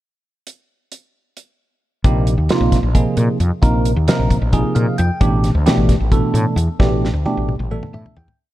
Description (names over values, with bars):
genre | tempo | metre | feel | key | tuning
electric jazz fusion | 265 BPM (eighths) | 7/8 | straight | unclear | A4 = 440 Hz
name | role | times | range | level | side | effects
damped 70s drum kit | drums | 0.5-8.4 s | hi-hat, kick drum, snare drum, toms | -18 LUFS | equal | none
bell-like tine electric piano | accompaniment | 2.0-8.4 s | B2 to G5 | -18 LUFS | right 1 dB | phaser
woody fretless electric bass | bass | 2.0-8.3 s | A1 to Bb2 | -17 LUFS | equal | none
room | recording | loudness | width
light reverb | dark, warm production | -14 LUFS | side -15 dB against mid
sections
0.5-2.0 pickup bar; 2.0-8.4 groove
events
tine electric piano fill 4.5-5.2, 7.7-8.4; fade-out 6.8-8.4; drum fill 6.8-8.4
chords
0.5 N.C.; 2.0 Bb13sus4; 5.2 A9sus4